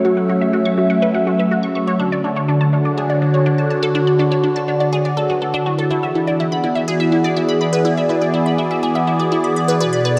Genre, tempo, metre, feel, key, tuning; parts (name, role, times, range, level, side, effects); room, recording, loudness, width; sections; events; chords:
ambient, sequencer-driven space music; 123 BPM; 4/4; straight; A4 = 439 Hz
phased analog pad; sustained chords; 0.0-10.2 s; B2 to E5; -19 LUFS; equal; phaser, chorus, shimmer reverb
vibraphone with medium mallets; arpeggios; 0.0-10.2 s; E4 to F#5; -27 LUFS; equal; delay, shimmer reverb
resonant blip pluck; riff; 0.0-10.2 s; D4 to C#6; -24 LUFS; equal; phaser, delay, shimmer reverb
wet plate reverb, RT60 3.6 s; dreamy mix soaked in reverb; -17 LUFS; mono
0.0-10.2 A section
fade-in on vibraphone 0.0-10.2
0.0 F#m7; 2.0 Dmaj7; 5.9 E7